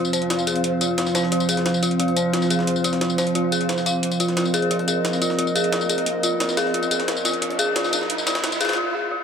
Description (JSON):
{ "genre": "dark technical drum and bass", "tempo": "177 BPM", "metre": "4/4", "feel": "straight", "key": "unclear", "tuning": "A4 = 440 Hz", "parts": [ { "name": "dark analog pad", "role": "sustained chords", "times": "0.0-8.8 s", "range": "F3 to F5", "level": "-24 LUFS", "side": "right 2 dB", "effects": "chorus" }, { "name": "dark detuned synth bell", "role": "arpeggios", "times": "0.0-9.2 s", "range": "F4 to F5", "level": "-24 LUFS", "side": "left 2 dB", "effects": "chorus, vintage 12-bit sampler grit, low-pass filter, ping-pong delay" }, { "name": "electronic tambourine and hi-hat", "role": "drums", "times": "0.0-8.8 s", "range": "none", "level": "-26 LUFS", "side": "left 3 dB", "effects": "none" }, { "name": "granular cloud pad", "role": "texture", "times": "0.0-8.8 s", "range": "C4 to F5", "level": "-29 LUFS", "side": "equal", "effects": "built-in reverb" }, { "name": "jungle sampler-style drum kit", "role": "drums", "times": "0.1-8.8 s", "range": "hi-hat, snare drum", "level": "-30 LUFS", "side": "equal", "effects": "high-pass filter on hats, high-pass filter on snare" }, { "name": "riser", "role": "sound effects", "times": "5.6-8.8 s", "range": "none", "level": "-31 LUFS", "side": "right 3 dB", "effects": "none" } ], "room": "moderate lush hall reverb, RT60 1.6 s", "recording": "high-pass filter", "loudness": "-19 LUFS", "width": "side -7 dB against mid", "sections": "0.0-9.2 A section", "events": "build-up 0.0-9.2; riser 5.6-8.8; break 8.8-9.2", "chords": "0.0 F5", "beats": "0.30 0.64 0.98 | 1.32 1.66 2.00 2.33 | 2.67 3.01 3.35 3.69 | 4.03 4.37 4.71 5.05 | 5.39 5.72 6.06 6.40 | 6.74 7.08 7.42 7.76 | 8.10 8.44 8.78 9.12" }